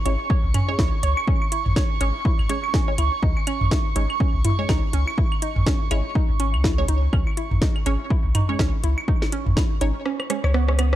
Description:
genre	minimal techno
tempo	123 BPM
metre	4/4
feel	swing 58% on 16ths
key	C# minor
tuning	A4 = 440 Hz
part	airy breathy pad	texture	0.0-11.0 s	C#6 to D#6	-30 LUFS	right 5 dB	chorus, phaser, sidechain pumping
part	hollow square pluck	riff	0.1-11.0 s	B3 to C#5	-31 LUFS	right 1 dB	chorus, phaser, sidechain pumping, digital delay
part	filtered dub chord stab	stabs	0.1-10.7 s	G#3 to C#5	-31 LUFS	right 2 dB	phaser, digital delay
part	punchy sub bass	bass	0.1-11.0 s	G#1 to C#2	-22 LUFS	equal	sidechain pumping
part	house drum kit	drums	0.1-11.0 s	hi-hat, rim click, snare drum	-29 LUFS	equal	overdrive
part	electronic kick drum	drums	0.3-9.7 s	none	-22 LUFS	equal	overdrive
part	electronic toms and claves	percussion	0.5-10.9 s	none	-26 LUFS	right 1 dB	overdrive, digital delay
room	digital ambience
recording	dark, warm production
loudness	-19 LUFS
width	side -13 dB against mid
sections	0.0-11.0 A section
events	kick drops out 10.1-11.0; drum fill 10.1-11.0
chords	0.0 C#5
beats	0.30 0.79 | 1.27 1.76 2.25 2.74 | 3.23 3.71 4.20 4.69 | 5.18 5.67 6.15 6.64 | 7.13 7.62 8.10 8.59 | 9.08 9.57 10.06 10.54

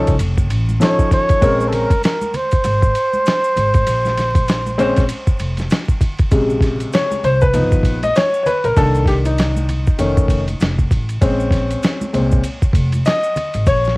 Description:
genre	hip hop, jazz-hop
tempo	98 BPM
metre	4/4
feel	swing 59% on 16ths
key	Bb minor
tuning	A4 = 440 Hz
part	warm upright piano	accompaniment	0.0-14.0 s	Bb2 to D#5	-17 LUFS	left 1 dB	none
part	upright bass	bass	0.0-14.0 s	F1 to C2	-19 LUFS	equal	none
part	dusty soul sampler-style drum kit	drums	0.1-13.9 s	hi-hat, kick drum, ride cymbal, snare drum	-18 LUFS	equal	vintage 12-bit sampler grit
part	maracas and congas	percussion	0.1-14.0 s	none	-31 LUFS	right 2 dB	none
part	breathy flugelhorn	melody	0.8-5.7 s	A4 to Db5	-18 LUFS	right 1 dB	none
room	studio ambience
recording	home recording on cassette, vinyl crackle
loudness	-14 LUFS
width	side -23 dB against mid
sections	0.0-6.3 A section; 6.3-14.0 B section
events	upright piano solo 6.3-14.0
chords	0.2 F7b13; 1.4 Bbm9; 7.5 G7alt; 8.8 Cm7; 10.0 F7b13; 11.2 Bbm9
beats	0.20 0.81 | 1.42 2.04 2.65 3.26 | 3.87 4.48 5.10 5.71 | 6.32 6.93 7.54 8.16 | 8.77 9.38 9.99 10.61 | 11.22 11.83 12.44 13.05 | 13.67

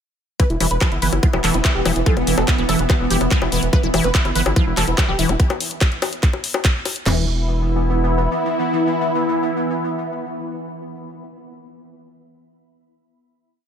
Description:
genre	psychedelic trance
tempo	144 BPM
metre	4/4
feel	straight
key	unclear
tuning	A4 = 440 Hz
part	wide unison lead	melody	0.4-11.2 s	B3 to B4	-24 LUFS	equal	phaser, sidechain pumping, ping-pong delay
part	pulsing gated texture	sustained chords	0.6-11.2 s	E3 to B3	-26 LUFS	equal	chorus, built-in reverb, sidechain pumping
part	liquid acid bass	riff	0.4-7.3 s	E3 to F4	-25 LUFS	moving between left 4 dB and right 5 dB	chorus, auto-pan, sidechain pumping, tape echo
part	garage drum kit	drums	0.4-7.2 s	crash cymbal, kick drum, snare drum, toms	-17 LUFS	equal	small room ambience
part	garage drum kit	drums	0.4-7.0 s	bongos, handclaps, hi-hat	-22 LUFS	left 3 dB	small room ambience
part	ethereal airy pad	texture	1.4-11.2 s	B3 to B5	-29 LUFS	equal	ensemble chorus, built-in reverb, phaser, sidechain pumping
part	round analog bass	bass	0.5-8.3 s	E1 to G1	-21 LUFS	equal	none
part	formant-sweep wobble bass	second line	1.5-5.1 s	E3 to B3	-34 LUFS	left 2 dB	none
room	light reverb, digital ambience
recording	none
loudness	-16 LUFS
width	side -8 dB against mid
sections	0.4-7.1 drop; 7.1-10.4 final chord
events	drop 0.4-7.1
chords	0.4 E5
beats	| 0.40 0.81 1.23 1.65 | 2.06 2.48 2.90 3.31 | 3.73 4.15 4.56 4.98 | 5.40 5.81 6.23 6.65 | 7.06 7.48 7.90 8.31 | 8.73 9.15 9.56 9.98

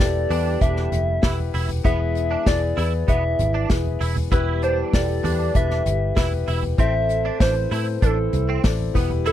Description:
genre	piano-driven pop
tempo	97 BPM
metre	4/4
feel	straight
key	A minor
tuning	A4 = 439 Hz
part	soft struck synth lead	melody	0.0-9.3 s	A4 to E5	-25 LUFS	left 1 dB	chorus
part	warm French horn section	second line	0.0-9.3 s	E3 to A4	-31 LUFS	right 14 dB	none
part	warm grand piano	accompaniment	0.0-9.3 s	A2 to D5	-28 LUFS	left 13 dB	none
part	vintage muted picked electric bass	bass	0.0-9.3 s	E1 to A2	-23 LUFS	equal	none
part	unplugged drum kit	drums	0.0-9.3 s	hi-hat, kick drum, snare drum, toms	-22 LUFS	equal	none
part	direct-recorded clean electric guitar	riff	0.3-9.3 s	B3 to E4	-30 LUFS	right 7 dB	ensemble chorus
room	little or no reverb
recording	dry, close 1970s-style studio recording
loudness	-19 LUFS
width	side -11 dB against mid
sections	0.0-9.3 A section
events	none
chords	0.0 Em; 1.8 E; 4.3 Em; 6.8 Am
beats	0.00 0.61 1.23 | 1.85 2.46 3.08 3.70 | 4.32 4.93 5.55 6.17 | 6.79 7.40 8.02 8.64 | 9.26

